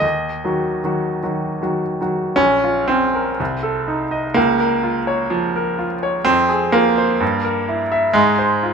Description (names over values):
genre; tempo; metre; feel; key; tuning
classical, romantic character piece for solo piano; 45-65 BPM; 2/4; rubato; Bb minor; A4 = 440 Hz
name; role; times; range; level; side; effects
bright baby grand piano; solo; 0.0-8.7 s; Bb1 to E5; -16 LUFS; right 1 dB; none
room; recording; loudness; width
moderate large studio reverb, RT60 1.1 s; minimal, uncompressed stereo recording; -16 LUFS; side -6 dB against mid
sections
0.0-2.4 A section; 2.4-8.7 B section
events
none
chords
0.0 Ebm; 2.4 Bbm; 3.4 Adim/C; 4.4 Bbm/Db; 6.3 Fm; 7.2 Edim/G; 8.2 Fm/Ab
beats
| 0.03 1.24 | 2.38 3.40 | 4.37 5.31 | 6.28 7.22 | 8.16